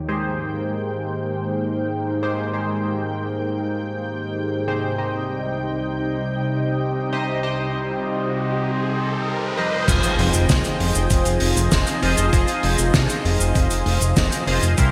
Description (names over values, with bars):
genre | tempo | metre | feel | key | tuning
synthwave | 98 BPM | 4/4 | straight | F minor | A4 = 440 Hz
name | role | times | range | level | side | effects
analog string pad | sustained chords | 0.0-14.9 s | C2 to G5 | -28 LUFS | equal | ensemble chorus, sidechain pumping
chorused polysynth | stabs | 0.1-14.9 s | C3 to Eb5 | -26 LUFS | equal | phaser, digital delay
riser and impact | sound effects | 7.4-12.3 s | none | -32 LUFS | equal | none
fat analog bass | bass | 9.9-14.9 s | F1 to C2 | -23 LUFS | equal | none
electronic kick drum | drums | 9.9-14.9 s | none | -23 LUFS | equal | none
loose indie drum kit | drums | 9.9-14.9 s | cabasa, crash cymbal, hi-hat, snare drum | -25 LUFS | equal | low-pass filter on cymbals, low-pass filter on hats, low-pass filter on snare, low-pass filter on perc, low-pass filter on room, gated reverb
room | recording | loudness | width
wet lush hall reverb, RT60 2.0 s | bright 1980s-style digital production | -22 LUFS | mono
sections
0.0-9.9 A section; 9.9-14.9 B section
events
filter sweep on analog polysynth 0.0-9.9; riser 7.4-9.9; impact 9.9-12.3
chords
0.1 Abmaj7; 5.0 Cm; 9.9 Fm7